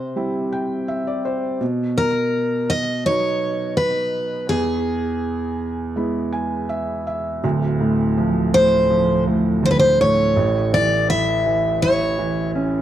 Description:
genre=acoustic folk-pop ballad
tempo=83 BPM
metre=4/4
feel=straight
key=unclear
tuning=A4 = 440 Hz
part: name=picked steel-string acoustic guitar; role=melody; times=0.0-12.5 s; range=G#4 to E5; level=-19 LUFS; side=equal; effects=slapback echo
part: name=felt-muted upright piano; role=accompaniment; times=0.0-12.8 s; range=D1 to G#5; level=-20 LUFS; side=right 1 dB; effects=none
room=light reverb, studio reverb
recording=dry, close 1970s-style studio recording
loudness=-18 LUFS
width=side -11 dB against mid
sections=0.0-7.4 A section; 7.4-12.8 B section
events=none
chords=0.0 C; 1.6 B; 4.5 E; 7.4 Dm7; 10.4 A

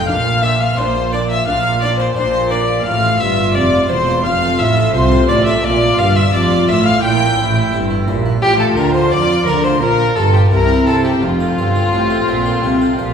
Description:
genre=classical, baroque-style concerto movement with solo episodes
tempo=86 BPM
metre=4/4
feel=straight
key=F major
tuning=A4 = 440 Hz
part: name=rich violin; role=melody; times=0.0-13.1 s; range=F4 to G5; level=-19 LUFS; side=left 2 dB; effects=none
part: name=warm chamber violin section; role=melody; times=0.0-13.1 s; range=F5 to G6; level=-23 LUFS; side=left 3 dB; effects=none
part: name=rich chamber violin section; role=second line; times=0.0-13.1 s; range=F4 to G5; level=-20 LUFS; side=left 1 dB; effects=none
part: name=harpsichord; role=accompaniment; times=0.0-13.1 s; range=E2 to C5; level=-24 LUFS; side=equal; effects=none
part: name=warm chamber viola section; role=accompaniment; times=0.1-13.1 s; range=C4 to F4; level=-22 LUFS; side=right 2 dB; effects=none
part: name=rich chamber double bass section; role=bass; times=0.1-13.1 s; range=E1 to C3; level=-19 LUFS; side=right 2 dB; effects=none
part: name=warm chamber cello section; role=bass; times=0.1-13.1 s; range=E2 to C4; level=-19 LUFS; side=right 1 dB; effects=none
room=wet recital hall reverb, RT60 1.8 s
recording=heard from further back in the room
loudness=-12 LUFS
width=side -7 dB against mid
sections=0.0-13.1 A section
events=none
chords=0.1 Bb; 2.9 F; 5.6 Bb; 7.0 C7; 8.4 F/A; 9.8 Gm7/Bb; 10.5 C7; 11.2 F

